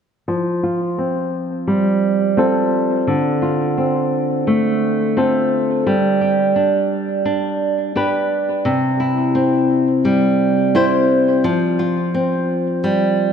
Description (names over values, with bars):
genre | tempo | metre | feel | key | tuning
folktronica | 86 BPM | 4/4 | straight | unclear | A4 = 441 Hz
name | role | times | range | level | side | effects
flamenco guitar | arpeggios | 0.3-13.3 s | C3 to C5 | -15 LUFS | equal | low-pass filter, tape echo
room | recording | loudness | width
moderate scoring stage reverb, RT60 1.7 s | none | -15 LUFS | side -7 dB against mid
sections
0.3-13.3 A section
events
filter sweep on nylon-string guitar 0.3-13.3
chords
0.3 Fadd9; 3.1 Dm7; 5.9 G; 8.7 C; 11.4 Fsus2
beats
| 0.29 0.98 1.68 2.38 | 3.08 3.77 4.47 5.17 | 5.87 6.57 7.26 7.96 | 8.66 9.36 10.05 10.75 | 11.45 12.15 12.84